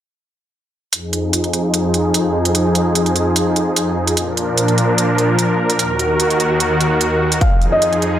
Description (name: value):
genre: heavy wobble dubstep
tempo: 148 BPM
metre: 4/4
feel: half-time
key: F phrygian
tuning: A4 = 440 Hz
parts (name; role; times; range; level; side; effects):
- supersaw pad; sustained chords; 0.9-8.2 s; Eb2 to Bb4; -15 LUFS; equal; sidechain pumping, low-pass filter
- electronic hi-hat; drums; 0.9-8.1 s; none; -19 LUFS; right 3 dB; studio reverb
- felt-muted upright piano; melody; 7.4-7.9 s; Eb5 to F5; -17 LUFS; left 1 dB; vintage 12-bit sampler grit, digital delay
- electronic kick drum; drums; 7.4-7.5 s; none; -14 LUFS; equal; studio reverb
room: moderate digital room reverb, RT60 1.1 s, digital ambience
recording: none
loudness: -14 LUFS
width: side -11 dB against mid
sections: 0.9-8.2 A section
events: filter sweep on supersaw synth 0.9-8.2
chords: 0.9 Fm7; 4.2 Bb; 5.8 Ebm; 7.4 Fm7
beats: | 0.93 1.33 1.74 2.14 | 2.55 2.95 3.36 3.77 | 4.17 4.58 4.98 5.39 | 5.79 6.20 6.60 7.01 | 7.41 7.82